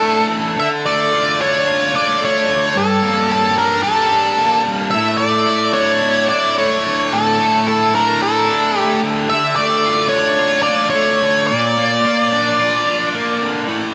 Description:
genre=rock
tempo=110 BPM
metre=4/4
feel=straight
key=A phrygian dominant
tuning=A4 = 440 Hz
part: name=octave-fuzz lead guitar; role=melody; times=0.0-13.1 s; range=A4 to E5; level=-17 LUFS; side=equal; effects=distortion, analog delay
part: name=cranked stack guitar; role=riff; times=0.0-13.9 s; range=G2 to G4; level=-21 LUFS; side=equal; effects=overdrive, flanger
room=wet huge ambient reverb, RT60 3.9 s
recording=dreamy mix soaked in reverb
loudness=-16 LUFS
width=mono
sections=0.0-13.7 A section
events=none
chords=0.0 Asus4; 0.6 Dm; 2.7 Gm; 4.9 Asus4; 9.3 Dm; 11.5 Bb

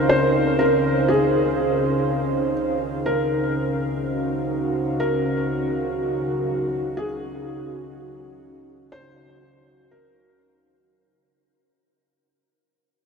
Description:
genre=ambient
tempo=61 BPM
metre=4/4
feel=straight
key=unclear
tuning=A4 = 441 Hz
part: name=felt-muted upright piano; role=melody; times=0.0-10.6 s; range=Ab4 to C5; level=-24 LUFS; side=left 1 dB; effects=ping-pong delay
part: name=warbly tape-like pad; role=sustained chords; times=0.0-10.9 s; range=Db3 to F5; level=-23 LUFS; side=right 1 dB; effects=chorus, built-in reverb
room=wet huge ambient reverb, RT60 8.3 s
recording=none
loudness=-20 LUFS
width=side -5 dB against mid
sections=0.0-10.9 A section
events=fade-out 0.4-10.9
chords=0.0 Dbmaj7; 3.0 Ebmadd9/Db

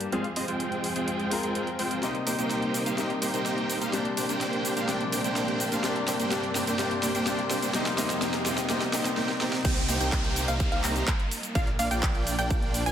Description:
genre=EDM, festival progressive house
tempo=126 BPM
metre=4/4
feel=straight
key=C minor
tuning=A4 = 437 Hz
part: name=clear grand piano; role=accompaniment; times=0.0-9.7 s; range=G2 to Bb4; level=-31 LUFS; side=left 4 dB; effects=sidechain pumping, dub echo
part: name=warm studio string section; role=sustained chords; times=0.0-12.9 s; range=F2 to Bb4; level=-37 LUFS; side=right 1 dB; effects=sidechain pumping
part: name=big-room dance drum kit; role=drums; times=0.0-12.9 s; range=crash cymbal, handclaps, hi-hat, shaker, snare drum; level=-33 LUFS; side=equal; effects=overdrive, high-pass filter on hats, high-pass filter on snare, high-pass filter on perc, high-pass filter on cymbals
part: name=riser and downlifter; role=sound effects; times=0.0-12.9 s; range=none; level=-37 LUFS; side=right 1 dB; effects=none
part: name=dense compressed supersaw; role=riff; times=0.1-12.9 s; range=Ab3 to Bb5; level=-29 LUFS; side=right 1 dB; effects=sidechain pumping, low-pass filter, dub echo
part: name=wide unison pluck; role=arpeggios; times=9.6-12.9 s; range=F5 to Bb5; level=-33 LUFS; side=equal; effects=sidechain pumping, dub echo
part: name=wide detuned saw bass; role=bass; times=9.6-12.9 s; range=Bb1 to C2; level=-31 LUFS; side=equal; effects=chorus, sidechain pumping
part: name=electronic kick drum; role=drums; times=9.6-12.6 s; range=none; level=-27 LUFS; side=equal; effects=overdrive
room=moderate digital room reverb, RT60 1.2 s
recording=none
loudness=-25 LUFS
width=side -9 dB against mid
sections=0.0-9.6 A section; 9.6-12.9 B section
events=build-up 0.0-9.6; drum fill 2.0-9.2, 9.2-9.6; drop 9.6-12.9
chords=0.1 Fm; 2.0 Cm7; 3.9 Bb; 5.8 Gm; 7.7 Fm; 9.6 Cm7; 11.6 Bb

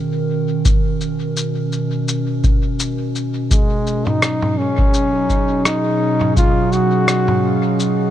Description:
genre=ambient dub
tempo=84 BPM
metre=4/4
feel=swing 56% on 16ths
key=unclear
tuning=A4 = 440 Hz
part: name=warbly tape-like pad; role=sustained chords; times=0.0-8.1 s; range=Cb3 to Bb4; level=-19 LUFS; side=right 1 dB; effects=chorus, built-in reverb
part: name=electronic kick drum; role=drums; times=0.7-6.5 s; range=none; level=-17 LUFS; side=equal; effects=none
part: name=lo-fi sampler-style drum kit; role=drums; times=0.7-8.0 s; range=rim click, shaker, toms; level=-21 LUFS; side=equal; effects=dub echo
part: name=clear trombone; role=melody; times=3.5-7.8 s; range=Ab3 to Gb4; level=-19 LUFS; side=equal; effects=dub echo
room=light reverb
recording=none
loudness=-15 LUFS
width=side -11 dB against mid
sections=0.0-8.1 A section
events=none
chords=0.0 Cbmaj9; 3.5 Db7sus4

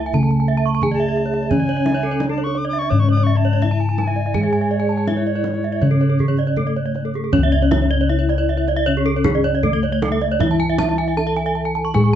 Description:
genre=Balinese gamelan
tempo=78-87 BPM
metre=4/4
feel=straight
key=C# pelog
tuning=A4 = 440 Hz
part: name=gamelan-type bronze metallophone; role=melody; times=0.0-12.2 s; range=A3 to A4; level=-23 LUFS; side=left 2 dB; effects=none
part: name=gamelan-type bronze metallophone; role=accompaniment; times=0.0-12.2 s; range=C#3 to A3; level=-25 LUFS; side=right 5 dB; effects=none
part: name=gamelan-type bronze metallophone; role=arpeggios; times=0.0-12.1 s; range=G#4 to C#6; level=-25 LUFS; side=right 9 dB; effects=none
part: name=gamelan-type bossed gongs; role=bass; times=0.0-12.2 s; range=C#2 to A4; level=-20 LUFS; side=left 2 dB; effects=none
part: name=gamelan-type bronze metallophone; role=arpeggios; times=0.1-12.0 s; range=G#4 to C#6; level=-26 LUFS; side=left 4 dB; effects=none
part: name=kendang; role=percussion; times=0.1-12.1 s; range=none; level=-25 LUFS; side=right 4 dB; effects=none
part: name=alto recorder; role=second line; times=0.9-6.3 s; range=C#5 to D6+42c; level=-28 LUFS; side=left 2 dB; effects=none
room=light reverb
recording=nothing above 7.8 kHz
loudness=-16 LUFS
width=side -10 dB against mid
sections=0.0-7.3 A section; 7.3-12.2 B section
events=none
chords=none

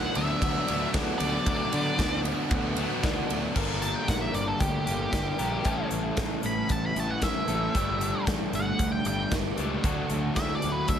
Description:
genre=indie rock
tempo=114 BPM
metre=4/4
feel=straight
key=unclear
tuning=A4 = 440 Hz
part: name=octave-fuzz lead guitar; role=melody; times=0.0-11.0 s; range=G4 to B5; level=-31 LUFS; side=equal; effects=distortion, slapback echo
part: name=fuzz guitar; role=riff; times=0.0-11.0 s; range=G2 to G4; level=-32 LUFS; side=right 7 dB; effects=distortion, wide subtle chorus
part: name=overdriven electric guitar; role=riff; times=0.0-11.0 s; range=G2 to Bb4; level=-32 LUFS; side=left 9 dB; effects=none
part: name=fuzz picked electric bass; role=bass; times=0.0-11.0 s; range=G1 to D3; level=-33 LUFS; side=equal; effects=overdrive
part: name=big rock drum kit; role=drums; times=0.2-11.0 s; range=crash cymbal, hi-hat, kick drum, ride cymbal, snare drum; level=-30 LUFS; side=equal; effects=none
room=light reverb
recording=lossy compression artefacts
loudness=-25 LUFS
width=side -9 dB against mid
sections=0.0-3.6 A section; 3.6-11.0 B section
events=lead electric guitar solo 3.6-11.0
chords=0.0 Bm/D; 3.6 Gm; 5.7 A5; 7.8 Gsus2; 9.8 D

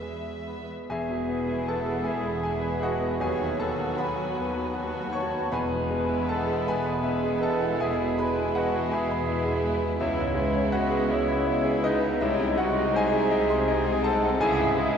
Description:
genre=classical, romantic movement for piano and orchestra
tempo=53 BPM (dotted quarters)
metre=12/8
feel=uneven beats, rubato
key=E major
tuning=A4 = 441 Hz
part: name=bright grand piano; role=melody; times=0.0-15.0 s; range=B#1 to C#6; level=-28 LUFS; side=equal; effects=none
part: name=warm chamber violin section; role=melody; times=0.0-15.0 s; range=D#4 to E5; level=-37 LUFS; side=left 2 dB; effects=none
part: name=dark clarinet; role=second line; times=0.0-15.0 s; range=B3 to E4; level=-35 LUFS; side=left 2 dB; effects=none
part: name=rich chamber violin section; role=second line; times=0.0-15.0 s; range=G#3 to B4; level=-38 LUFS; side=left 1 dB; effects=none
part: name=warm chamber viola section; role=accompaniment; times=0.0-15.0 s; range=E3 to G#3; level=-37 LUFS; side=right 3 dB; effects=none
part: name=warm chamber cello section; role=bass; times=0.0-15.0 s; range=D#2 to C#3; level=-35 LUFS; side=right 1 dB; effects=none
part: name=clear oboe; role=second line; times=0.9-15.0 s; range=D#4 to C#5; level=-38 LUFS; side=right 1 dB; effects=none
part: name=mellow small flute group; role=second line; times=0.9-15.0 s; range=B4 to A5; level=-35 LUFS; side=left 2 dB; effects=none
part: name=clear bassoon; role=accompaniment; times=0.9-15.0 s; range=E3 to G#3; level=-35 LUFS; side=equal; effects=none
part: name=warm French horn section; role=sustained chords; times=0.9-15.0 s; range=E3 to B4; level=-36 LUFS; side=left 1 dB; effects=none
part: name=mellow trumpet section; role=stabs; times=0.9-15.0 s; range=D#4 to C#5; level=-36 LUFS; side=right 2 dB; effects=none
part: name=dark chamber double bass section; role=bass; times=0.9-15.0 s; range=E1 to D#2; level=-36 LUFS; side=right 2 dB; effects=none
room=wet church reverb, RT60 3.2 s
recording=none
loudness=-24 LUFS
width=side -7 dB against mid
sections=0.9-15.0 A section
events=none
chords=0.0 E; 3.2 B/D#; 5.5 E; 10.0 C#m7; 12.2 G#/B#; 14.4 C#m

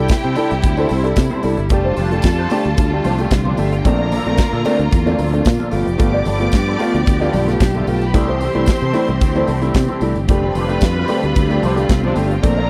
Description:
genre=disco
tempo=112 BPM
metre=4/4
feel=straight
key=unclear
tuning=A4 = 440 Hz
part: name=clear studio string section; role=second line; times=0.0-12.7 s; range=A3 to D6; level=-29 LUFS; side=equal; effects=none
part: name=warm grand piano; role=accompaniment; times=0.0-12.6 s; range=G2 to A4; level=-23 LUFS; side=equal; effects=none
part: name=rich studio string section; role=sustained chords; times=0.0-12.7 s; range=C3 to G4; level=-26 LUFS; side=equal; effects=none
part: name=fingered electric bass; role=bass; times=0.0-12.7 s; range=F1 to C3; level=-22 LUFS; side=equal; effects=none
part: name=mellow electric guitar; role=accompaniment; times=0.1-12.7 s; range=A3 to D5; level=-27 LUFS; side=equal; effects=wah, ensemble chorus
part: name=modern studio drum kit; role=drums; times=0.1-12.6 s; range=hi-hat, kick drum, snare drum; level=-18 LUFS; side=equal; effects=none
part: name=congas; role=percussion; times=0.1-12.6 s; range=none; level=-32 LUFS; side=equal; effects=none
part: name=tambourine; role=percussion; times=0.1-12.6 s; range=none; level=-44 LUFS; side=equal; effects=none
room=little or no reverb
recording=dry, close 1970s-style studio recording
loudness=-16 LUFS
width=mono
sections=0.0-12.7 A section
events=none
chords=0.0 C6; 1.7 F69; 3.8 Bbmaj7; 5.7 G9; 8.1 C6; 10.3 F69

